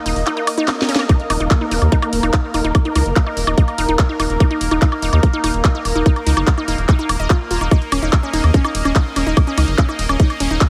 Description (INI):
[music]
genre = psychedelic trance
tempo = 145 BPM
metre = 4/4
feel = straight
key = unclear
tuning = A4 = 440 Hz
[part]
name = bubbling stepped-filter texture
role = sustained chords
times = 0.0-10.7 s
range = Bb3 to Eb5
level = -26 LUFS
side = equal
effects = chorus, built-in reverb, sidechain pumping
[part]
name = unison pluck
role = riff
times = 0.1-10.5 s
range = Db4 to Eb5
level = -24 LUFS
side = equal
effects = sidechain pumping, delay
[part]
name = round analog bass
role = bass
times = 0.1-10.6 s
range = Eb1 to Eb2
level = -21 LUFS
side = equal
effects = none
[part]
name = drum and bass drum kit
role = drums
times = 0.1-10.7 s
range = handclaps, hi-hat, ride cymbal, snare drum, woodblock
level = -24 LUFS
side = equal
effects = none
[part]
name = electronic kick drum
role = drums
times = 1.1-10.7 s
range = none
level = -16 LUFS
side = equal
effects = none
[sound]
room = light reverb, digital ambience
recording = heavily compressed radio sound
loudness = -17 LUFS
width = mono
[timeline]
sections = 0.0-10.7 A section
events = drum fill 0.7-1.1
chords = 0.0 Eb5